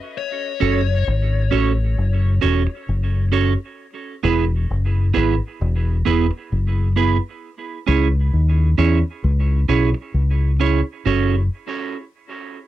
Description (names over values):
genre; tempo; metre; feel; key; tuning
dub reggae; 66 BPM; 4/4; swing 55% on 16ths; F# dorian; A4 = 440 Hz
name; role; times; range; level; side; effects
high-gain lead guitar; melody; 0.2-1.0 s; C#5; -29 LUFS; left 10 dB; distortion, cassette tape, dub echo
clean electric guitar; accompaniment; 0.6-11.4 s; B3 to C#5; -22 LUFS; right 7 dB; cassette tape, dub echo
deep dub fingered electric bass; bass; 0.6-11.5 s; E1 to E2; -17 LUFS; left 1 dB; none
room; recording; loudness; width
light reverb; home recording on cassette; -17 LUFS; side -14 dB against mid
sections
0.0-11.1 A section; 11.1-12.7 B section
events
none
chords
0.0 F#m; 3.8 E; 7.4 C#m; 11.1 F#m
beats
| 0.15 1.06 1.97 2.88 | 3.79 4.70 5.61 6.51 | 7.42 8.33 9.24 10.14 | 11.05